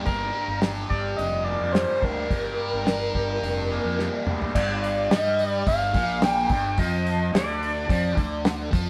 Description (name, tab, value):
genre	psychedelic rock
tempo	107 BPM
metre	4/4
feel	straight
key	G minor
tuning	A4 = 445 Hz
part	fuzz guitar	riff	0.0-8.9 s	G2 to G4	-31 LUFS	equal	distortion, phaser
part	overdriven synth lead	melody	0.1-8.4 s	Bb4 to G5	-29 LUFS	equal	distortion, phaser
part	fuzz fingered electric bass	bass	0.1-8.9 s	F1 to G2	-32 LUFS	equal	overdrive
part	cloth-damped thuddy drum kit	drums	0.1-8.9 s	crash cymbal, hi-hat, kick drum, snare drum, toms	-27 LUFS	equal	none
room	moderate stone room reverb, RT60 1.0 s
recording	band playing live in one room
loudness	-24 LUFS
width	mono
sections	0.0-4.5 A section; 4.5-8.9 B section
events	drum fill 4.0-4.5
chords	0.0 Gm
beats	| 0.06 0.62 1.18 1.74 | 2.30 2.86 3.42 3.98 | 4.54 5.10 5.66 6.22 | 6.78 7.34 7.90 8.46